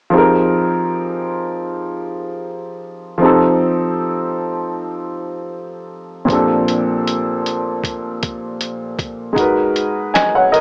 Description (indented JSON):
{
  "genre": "lo-fi hip hop",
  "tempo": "78 BPM",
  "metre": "4/4",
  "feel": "swing 55% on 16ths",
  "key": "unclear",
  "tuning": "A4 = 439 Hz",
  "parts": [
    { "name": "dark upright piano", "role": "accompaniment", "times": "0.1-10.6 s", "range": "Bb2 to Ab5", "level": "-15 LUFS", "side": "equal", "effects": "low-pass filter" },
    { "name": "lo-fi sampler-style drum kit", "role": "drums", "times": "6.3-10.6 s", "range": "hi-hat, kick drum, snare drum", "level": "-21 LUFS", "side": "equal", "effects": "none" }
  ],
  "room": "moderate small room reverb, RT60 0.6 s",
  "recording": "small speaker sound",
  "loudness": "-15 LUFS",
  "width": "side -36 dB against mid",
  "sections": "0.1-10.6 A section",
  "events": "none",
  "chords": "0.1 Fm11; 3.2 F7; 6.3 Bbmaj13; 9.4 Abm7"
}